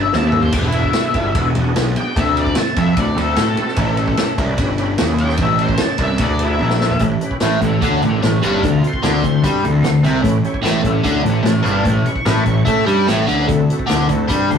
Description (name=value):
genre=blues rock power trio and southern rock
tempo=148 BPM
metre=4/4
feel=straight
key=A mixolydian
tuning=A4 = 440 Hz
part: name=octave-fuzz lead guitar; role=melody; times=0.0-14.6 s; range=E4 to C#6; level=-22 LUFS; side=left 3 dB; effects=wah, distortion
part: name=overdriven tonewheel organ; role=sustained chords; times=0.0-14.6 s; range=B3 to C#5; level=-26 LUFS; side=right 2 dB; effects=slow rotary speaker, chorus vibrato
part: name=fuzz picked electric bass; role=bass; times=0.0-14.6 s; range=E1 to A2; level=-19 LUFS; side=equal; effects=overdrive
part: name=vintage drum kit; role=drums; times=0.1-14.6 s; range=crash cymbal, hi-hat, kick drum, ride cymbal, snare drum, toms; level=-21 LUFS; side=equal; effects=none
part: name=biting overdriven guitar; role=riff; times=7.0-14.6 s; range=G2 to A3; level=-16 LUFS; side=left 1 dB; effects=phaser
room=wet studio reverb, RT60 0.5 s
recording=rough rehearsal-room recording, warm saturation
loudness=-14 LUFS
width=side -7 dB against mid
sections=0.0-7.0 A section; 7.0-14.6 B section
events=lead electric guitar solo 0.0-7.0; drum fill 0.1-0.5, 6.6-7.0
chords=0.0 A7; 0.5 E7; 2.2 D7; 3.8 A7; 6.2 E7; 7.0 A7; 8.6 D7; 10.2 A7; 13.5 D7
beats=0.13 | 0.54 0.95 1.35 1.76 | 2.16 2.57 2.97 3.38 | 3.78 4.18 4.59 4.99 | 5.39 5.80 6.20 6.61 | 7.01 7.41 7.82 8.22 | 8.62 9.03 9.43 9.84 | 10.24 10.65 11.05 11.46 | 11.86 12.27 12.68 13.08 | 13.49 13.89 14.30